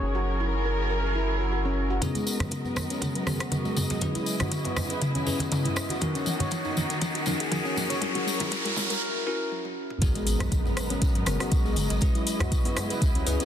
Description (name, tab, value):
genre	afro house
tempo	120 BPM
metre	4/4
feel	swing 54% on 16ths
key	unclear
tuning	A4 = 441 Hz
part	dark chamber string section	sustained chords	0.0-13.4 s	C#3 to D#5	-34 LUFS	equal	vintage 12-bit sampler grit, sidechain pumping
part	warm sub bass	bass	0.0-2.0, 10.0-13.4 s	F#1 to G#2	-29 LUFS	equal	sidechain pumping
part	handpan	arpeggios	0.1-13.4 s	F#3 to C#5	-32 LUFS	equal	sidechain pumping, low-pass filter, ping-pong delay
part	bell-like tine electric piano	stabs	2.0-13.4 s	B3 to B4	-34 LUFS	left 3 dB	wide subtle chorus, sidechain pumping, low-pass filter, ping-pong delay
part	afro-pop drum kit	drums	2.0-13.4 s	hi-hat, rim click, toms	-31 LUFS	left 1 dB	soft clipping on snare
part	electronic kick drum	drums	2.0-13.1 s	none	-26 LUFS	equal	high-pass filter on kick
part	congas	percussion	2.0-8.9 s	none	-35 LUFS	right 2 dB	none
part	tambourine	percussion	2.0-13.4 s	none	-37 LUFS	left 3 dB	none
part	riser and impact	sound effects	4.2-12.0 s	none	-34 LUFS	equal	none
part	djembe	percussion	2.4-13.4 s	none	-36 LUFS	left 1 dB	none
room	light reverb, small room ambience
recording	dense, heavily limited modern master, high-pass filter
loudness	-24 LUFS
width	side -10 dB against mid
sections	0.0-2.0 A section; 2.0-10.0 B section; 10.0-13.4 C section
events	build-up 2.0-10.0; drum fill 2.0-9.0, 9.5-10.0; filter sweep on handpan 2.0-10.0; filter sweep 2.0-10.0; riser 4.2-9.0; break 9.0-10.0; drop 10.0-13.4; impact 10.0-12.0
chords	0.0 F#; 2.0 G#m9; 4.0 C#m7; 6.0 D#m7; 8.0 F#7; 10.0 G#m9; 12.0 C#m7